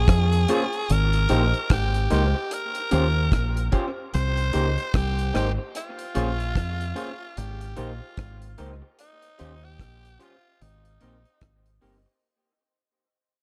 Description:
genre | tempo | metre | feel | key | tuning
lovers rock reggae | 74 BPM | 4/4 | swing 60% on 16ths | Ab major | A4 = 440 Hz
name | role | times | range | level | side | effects
raspy tenor saxophone | melody | 0.0-11.8 s | Eb4 to C5 | -32 LUFS | equal | tape echo
deep dub fingered electric bass | bass | 0.0-12.0 s | G1 to F2 | -26 LUFS | equal | none
deep reggae drum kit | drums | 0.1-12.0 s | hi-hat, kick drum, rim click | -26 LUFS | equal | dub echo
barky tine electric piano | accompaniment | 0.5-12.0 s | C4 to C5 | -32 LUFS | equal | none
electric guitar through a small old amp | stabs | 0.5-12.1 s | G3 to Db5 | -34 LUFS | equal | spring reverb, dub echo
room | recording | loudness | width
small room ambience | dark, warm production | -24 LUFS | mono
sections
0.0-12.2 A section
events
fade-out 0.0-12.2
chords
0.0 Bbm7; 0.9 Abmaj9; 2.5 Eb13; 4.1 Cm7; 5.8 Bbm7; 7.4 Abmaj9; 9.0 Eb13; 10.6 Abmaj9

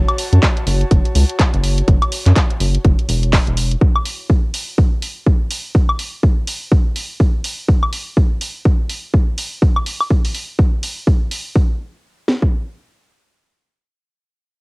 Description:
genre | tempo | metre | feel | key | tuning
deep house | 124 BPM | 4/4 | swing 59% on 16ths | unclear | A4 = 442 Hz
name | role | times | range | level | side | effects
rubbery square bass | bass | 0.0-3.8 s | E1 to F#2 | -14 LUFS | equal | sidechain pumping
airy breathy pad | texture | 0.0-3.8 s | F#4 to A5 | -30 LUFS | equal | chorus, sidechain pumping, cassette tape
house drum kit | drums | 0.1-11.4 s | handclaps, hi-hat, woodblock | -22 LUFS | equal | overdrive
house drum kit | drums | 0.4-12.5 s | kick drum, snare drum | -14 LUFS | equal | overdrive
room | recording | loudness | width
little or no reverb | home recording on cassette | -14 LUFS | side -29 dB against mid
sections
0.0-11.6 A section; 11.6-14.6 B section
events
fade-out on analog synth pad 0.0-3.8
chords
0.0 F#m; 3.6 Esus24; 11.6 N.C.

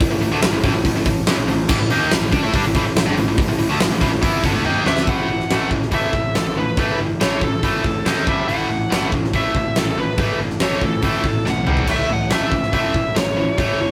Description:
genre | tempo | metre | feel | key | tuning
hard rock | 141 BPM | 4/4 | straight | A mixolydian | A4 = 440 Hz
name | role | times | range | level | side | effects
tight distorted guitar | riff | 0.0-13.9 s | G2 to E4 | -23 LUFS | equal | distortion
fuzz picked electric bass | bass | 0.0-13.9 s | E1 to A2 | -31 LUFS | equal | none
huge arena drum kit | drums | 0.0-13.7 s | crash cymbal, hi-hat, kick drum, snare drum, toms | -22 LUFS | equal | none
bluesy overdriven lead guitar | melody | 4.9-13.9 s | A4 to F#5 | -26 LUFS | equal | distortion
room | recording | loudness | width
moderate small room ambience, RT60 0.5 s | rough rehearsal-room recording, warm saturation | -19 LUFS | mono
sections
0.0-5.1 A section; 5.1-13.9 B section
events
drum fill 4.7-5.1, 11.5-11.9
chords
0.0 A5; 8.0 D#5; 8.3 G5; 8.5 A5; 11.7 C5; 11.9 A

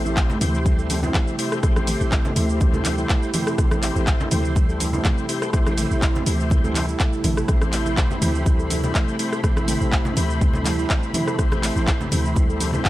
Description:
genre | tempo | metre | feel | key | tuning
afro house | 123 BPM | 4/4 | swing 54% on 16ths | A minor | A4 = 439 Hz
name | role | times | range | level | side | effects
warm analog pad | sustained chords | 0.0-12.9 s | C3 to B5 | -29 LUFS | right 1 dB | chorus, sidechain pumping
overdriven tonewheel organ | stabs | 0.0-12.9 s | A3 to C5 | -30 LUFS | left 2 dB | chorus vibrato, slow rotary speaker, sidechain pumping, dub echo
warm 808-style bass | bass | 0.0-12.8 s | A1 to D2 | -25 LUFS | equal | sidechain pumping
handpan | arpeggios | 0.1-12.9 s | E3 to A4 | -28 LUFS | equal | sidechain pumping, dub echo
house drum kit | drums | 0.1-12.9 s | handclaps, hi-hat, rim click, shaker, toms | -26 LUFS | equal | none
congas | percussion | 0.1-12.9 s | none | -29 LUFS | right 2 dB | none
electronic kick drum | drums | 0.2-12.9 s | none | -20 LUFS | equal | none
room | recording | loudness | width
digital ambience | none | -18 LUFS | side -16 dB against mid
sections
0.0-12.9 A section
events
none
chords
0.0 Am7

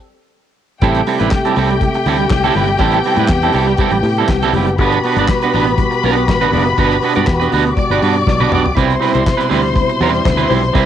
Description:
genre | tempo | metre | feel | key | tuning
disco | 121 BPM | 4/4 | straight | A dorian | A4 = 440 Hz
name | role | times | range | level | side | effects
warm studio string section | second line | 0.8-10.9 s | G4 to D6 | -18 LUFS | left 5 dB | cassette tape
electric guitar at the edge of break-up | accompaniment | 0.8-10.9 s | G3 to D5 | -16 LUFS | right 8 dB | tremolo, cassette tape
percussive tonewheel organ | sustained chords | 0.8-10.9 s | B2 to G4 | -21 LUFS | equal | overdrive, slow rotary speaker, cassette tape
fingered electric bass | bass | 0.8-10.9 s | F#1 to A2 | -18 LUFS | left 1 dB | none
damped 70s drum kit | drums | 0.8-10.9 s | handclaps, hi-hat, kick drum, snare drum, toms | -18 LUFS | left 1 dB | cassette tape
congas | percussion | 1.1-10.6 s | none | -26 LUFS | left 10 dB | none
room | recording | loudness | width
light reverb | home recording on cassette | -12 LUFS | side -10 dB against mid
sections
0.8-10.9 A section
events
stop 0.0-0.8; drum fill 8.3-8.8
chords
0.0 N.C.; 0.8 Am7; 4.8 Gmaj7; 8.8 Cmaj7

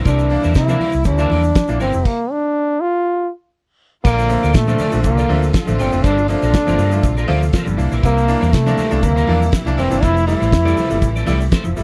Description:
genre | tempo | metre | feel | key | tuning
disco | 120 BPM | 4/4 | straight | unclear | A4 = 440 Hz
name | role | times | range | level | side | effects
electric guitar at the edge of break-up | accompaniment | 0.0-11.8 s | E4 to E5 | -30 LUFS | equal | ensemble chorus
clear studio string section | sustained chords | 0.0-11.8 s | Bb2 to A4 | -29 LUFS | equal | none
hollow-body short-scale fingered electric bass | bass | 0.0-11.8 s | F1 to C3 | -20 LUFS | equal | none
clear trombone | melody | 0.1-11.2 s | A3 to F4 | -20 LUFS | equal | none
bright grand piano | accompaniment | 0.1-11.8 s | G2 to E4 | -27 LUFS | equal | none
damped 70s drum kit | drums | 0.1-11.8 s | crash cymbal, hi-hat, kick drum, snare drum | -18 LUFS | equal | none
congas | percussion | 0.1-11.8 s | none | -29 LUFS | equal | none
egg shaker | percussion | 0.1-11.8 s | none | -45 LUFS | equal | none
room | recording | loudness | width
little or no reverb | dry, close 1970s-style studio recording | -16 LUFS | mono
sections
0.0-4.0 A section; 4.0-11.8 B section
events
trombone solo 0.0-4.0; stop 2.1-4.0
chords
0.0 C7; 2.1 N.C.; 4.0 Bbmaj7; 6.0 Gm11; 7.8 C7; 10.0 Fmaj7

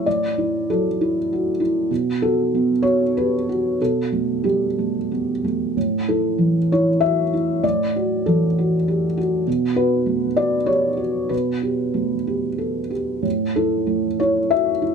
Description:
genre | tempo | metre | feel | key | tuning
neoclassical minimalist piano | 96 BPM | 3/4 | rubato | A mixolydian | A4 = 441 Hz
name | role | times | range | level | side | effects
felt-muted upright piano | solo | 0.0-14.9 s | A2 to E5 | -18 LUFS | equal | none
room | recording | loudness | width
moderate studio reverb, RT60 0.8 s | none | -18 LUFS | side -6 dB against mid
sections
0.0-5.8 A section; 5.8-14.9 A section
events
none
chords
0.0 A5; 1.9 B5; 3.8 Gadd9/B; 5.8 A5; 7.6 Dadd9/A; 9.5 B5; 11.3 Gadd9/B; 13.2 A5

